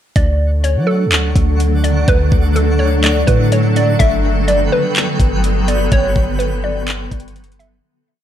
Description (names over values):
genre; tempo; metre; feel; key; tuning
hip hop, atmospheric cloud-rap; 125 BPM; 4/4; half-time; D major; A4 = 440 Hz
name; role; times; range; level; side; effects
hollow square pluck; melody; 0.2-7.8 s; A4 to E5; -19 LUFS; equal; chorus, low-pass filter, ping-pong delay
granular cloud pad; sustained chords; 0.7-7.8 s; D3 to A4; -20 LUFS; left 1 dB; built-in reverb, sidechain pumping
warm 808-style bass; bass; 0.2-7.8 s; G1 to F#3; -16 LUFS; equal; none
trap drum kit; drums; 0.2-7.7 s; handclaps, hi-hat, kick drum; -16 LUFS; equal; none
twinkling granular texture; texture; 0.5-7.8 s; F#3 to C#6; -26 LUFS; right 2 dB; built-in reverb
room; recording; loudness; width
light reverb, digital ambience; none; -12 LUFS; side -10 dB against mid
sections
0.2-7.8 verse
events
fade-out 5.9-7.8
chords
0.2 Dmaj7; 4.0 Gmaj7